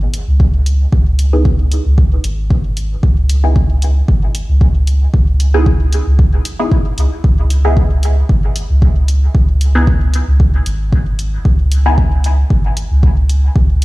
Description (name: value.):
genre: dub techno.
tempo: 114 BPM.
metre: 4/4.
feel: swing 55% on 16ths.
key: C# minor.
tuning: A4 = 440 Hz.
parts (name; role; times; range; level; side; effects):
soft dub sub bass; bass; 0.0-13.8 s; G#1 to C#2; -13 LUFS; equal; tube saturation, sidechain pumping.
electronic hi-hat; drums; 0.1-13.8 s; none; -27 LUFS; left 1 dB; none.
electronic kick drum; drums; 0.4-13.7 s; none; -12 LUFS; equal; overdrive.
filtered dub chord stab; stabs; 1.3-12.0 s; B3 to G#4; -21 LUFS; equal; phaser, sidechain pumping, dub echo.
room: little or no reverb.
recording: played on a big sound system in a bare room, large studio reverb.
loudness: -11 LUFS.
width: side -20 dB against mid.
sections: 0.0-13.8 A section.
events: none.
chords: 0.0 C#m7.